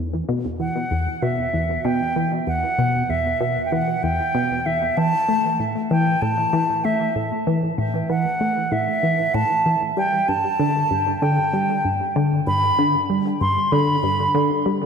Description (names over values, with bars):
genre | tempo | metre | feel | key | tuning
ambient | 96 BPM | 4/4 | straight | E minor | A4 = 441 Hz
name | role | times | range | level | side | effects
tight sequenced synth | riff | 0.0-14.9 s | E2 to A3 | -21 LUFS | left 1 dB | chorus, analog delay
concert flute | melody | 0.6-14.7 s | E5 to C6 | -21 LUFS | right 1 dB | analog delay
room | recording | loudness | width
wet lush hall reverb, RT60 2.7 s | dreamy mix soaked in reverb | -18 LUFS | side -6 dB against mid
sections
0.0-14.9 A section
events
none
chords
0.0 Em; 5.0 A5; 10.0 G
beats
0.60 1.22 1.85 | 2.47 3.10 3.72 4.35 | 4.97 5.60 6.22 6.85 | 7.47 8.10 8.72 9.35 | 9.97 10.60 11.22 11.85 | 12.47 13.10 13.72 14.35